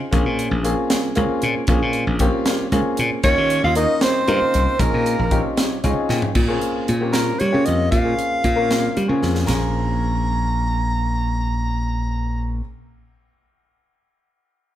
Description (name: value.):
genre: electric jazz fusion.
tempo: 77 BPM (dotted quarters).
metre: 6/8.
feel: straight.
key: Bb dorian.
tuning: A4 = 440 Hz.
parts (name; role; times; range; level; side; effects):
clear grand piano; accompaniment; 0.0-12.6 s; Db3 to G5; -24 LUFS; left 2 dB; none.
glassy slap bass; bass; 0.1-12.6 s; Bb1 to G3; -21 LUFS; equal; none.
crisp fusion drum kit; drums; 0.1-9.6 s; crash cymbal, hi-hat, kick drum, ride cymbal, snare drum, toms; -22 LUFS; equal; none.
clear soprano saxophone; melody; 3.2-12.6 s; Bb4 to Bb5; -22 LUFS; equal; none.
warm tenor saxophone; second line; 3.3-5.6 s; Bb3 to F4; -26 LUFS; right 4 dB; none.
room: moderate large studio reverb, RT60 1.2 s.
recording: band playing live in one room.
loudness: -17 LUFS.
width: side -12 dB against mid.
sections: 0.0-6.4 A section; 6.4-9.5 B section; 9.5-12.6 C section.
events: grand piano fill 5.6-6.4; drum fill 6.1, 9.2.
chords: 0.1 Bbm7; 3.2 Eb9; 4.8 Bbm11; 6.4 Bbm7.